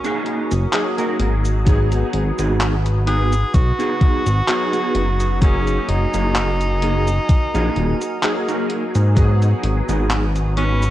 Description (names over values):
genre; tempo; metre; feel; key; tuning
vaporwave; 64 BPM; 4/4; swing 54% on 16ths; F# major; A4 = 438 Hz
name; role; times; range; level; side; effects
edgy tenor saxophone; melody; 0.0-10.9 s; C#4 to G#4; -25 LUFS; equal; tape echo
clear electric grand piano; accompaniment; 0.0-10.9 s; F#3 to G#4; -25 LUFS; equal; ensemble chorus, vintage 12-bit sampler grit, tape echo
warbly tape-like pad; sustained chords; 0.0-10.9 s; F#4 to E#6; -30 LUFS; right 2 dB; chorus, built-in reverb
mellow electric guitar; riff; 0.0-10.8 s; A#3 to B4; -25 LUFS; right 1 dB; ensemble chorus, vintage 12-bit sampler grit, tape echo
detuned 8-bit digital drum machine; drums; 0.0-10.9 s; cabasa, handclaps, hi-hat; -26 LUFS; equal; vintage 12-bit sampler grit, small room ambience
chorused synth bass; bass; 0.5-10.9 s; D#1 to G#2; -18 LUFS; equal; none
electronic kick drum; drums; 1.7-9.4 s; none; -15 LUFS; equal; overdrive, vintage 12-bit sampler grit, small room ambience
room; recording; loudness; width
light reverb, digital ambience; cassette tape; -16 LUFS; side -14 dB against mid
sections
0.0-10.9 A section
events
none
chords
0.0 F#69; 1.7 G#m7; 5.4 F#69; 9.2 G#m7